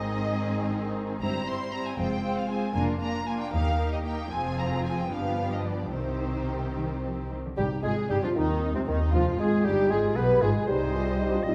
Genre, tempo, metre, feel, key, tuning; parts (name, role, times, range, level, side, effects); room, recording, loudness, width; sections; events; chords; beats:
quick classical-period movement for symphony orchestra; 77 BPM (dotted quarters); 6/8; rubato; C minor; A4 = 441 Hz
muted studio violin section; melody; 0.0-11.5 s; C4 to C6; -38 LUFS; equal
muted symphonic violin section; second line; 0.0-11.5 s; C4 to C5; -39 LUFS; equal
muted studio viola section; accompaniment; 0.0-11.5 s; C3 to Eb4; -35 LUFS; equal
muted studio cello section; bass; 0.0-11.5 s; C2 to F3; -36 LUFS; equal
muted studio double bass section; bass; 0.0-11.5 s; F1 to Eb2; -34 LUFS; equal
clear oboe; second line; 7.6-11.5 s; C4 to Eb5; -38 LUFS; equal
hollow large flute ensemble; second line; 7.6-11.5 s; C4 to Eb5; -38 LUFS; equal
mellow clarinet; second line; 7.6-11.5 s; Ab3 to G4; -37 LUFS; equal
warm bassoon; accompaniment; 7.6-11.5 s; C3 to B3; -34 LUFS; equal
mellow French horn section; sustained chords; 7.6-11.5 s; C4 to B4; -31 LUFS; equal
timpani; percussion; 7.6-8.3 s; C3; -38 LUFS; equal
moderate scoring stage reverb, RT60 1.9 s; -27 LUFS; mono
0.0-7.6 A section; 7.6-11.5 B section
0.0 Ab; 1.2 C/G; 2.0 Fm; 2.8 Bb/F; 3.5 Eb; 4.3 Fm; 5.1 G7; 5.9 Cm; 9.1 G7/F; 10.7 Cm
0.46 | 1.23 1.99 | 2.76 3.54 | 4.31 5.11 | 5.93 6.76 | 7.58 8.36 | 9.14 9.91 | 10.69 11.46